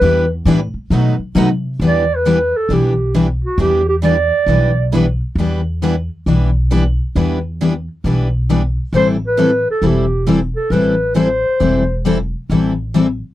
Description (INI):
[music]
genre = acoustic string swing (jazz manouche)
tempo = 135 BPM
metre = 4/4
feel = swing 64% on 8ths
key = E minor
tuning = A4 = 440 Hz
[part]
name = breathy clarinet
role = melody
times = 0.0-4.9, 9.0-12.0 s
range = F#4 to D5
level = -16 LUFS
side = right 1 dB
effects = none
[part]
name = picked steel-string acoustic guitar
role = accompaniment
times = 0.0-13.1 s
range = B2 to A4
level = -17 LUFS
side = left 4 dB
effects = none
[part]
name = picked steel-string acoustic guitar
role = accompaniment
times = 0.0-13.1 s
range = B2 to B4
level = -21 LUFS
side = right 6 dB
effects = none
[part]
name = upright bass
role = bass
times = 0.0-13.2 s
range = E1 to C3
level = -18 LUFS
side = equal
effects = none
[sound]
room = light reverb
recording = dry, close 1970s-style studio recording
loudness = -13 LUFS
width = side -14 dB against mid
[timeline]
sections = 0.0-1.8 A section; 1.8-13.3 B section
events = clarinet solo 0.0-1.8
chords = 0.0 Em7; 0.9 B7b9; 1.8 Em7; 8.9 Am7